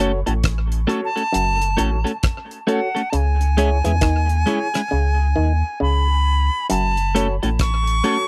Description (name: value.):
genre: roots reggae.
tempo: 67 BPM.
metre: 4/4.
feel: swing 62% on 16ths.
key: F# dorian.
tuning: A4 = 444 Hz.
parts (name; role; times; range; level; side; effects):
clean electric guitar; accompaniment; 0.0-8.2 s; G#3 to A4; -25 LUFS; equal; dub echo.
overdriven reed electric piano; stabs; 0.0-8.2 s; E4 to C#5; -27 LUFS; equal; phaser.
warm sub bass; bass; 0.0-8.0 s; F#1 to E2; -21 LUFS; equal; none.
damped 70s drum kit; drums; 0.0-8.3 s; hi-hat, kick drum, rim click; -26 LUFS; equal; none.
auto-wah clav; riff; 0.3-7.7 s; F#2 to E3; -27 LUFS; equal; overdrive.
bright reedy silver concert flute; melody; 1.0-8.3 s; F#5 to C#6; -26 LUFS; equal; dub echo.
room: little or no reverb.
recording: dry, close 1970s-style studio recording.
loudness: -20 LUFS.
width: mono.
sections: 0.0-8.3 A section.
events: drums muted 4.9-6.7.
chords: 0.0 F#m; 3.1 C#m; 6.7 F#m.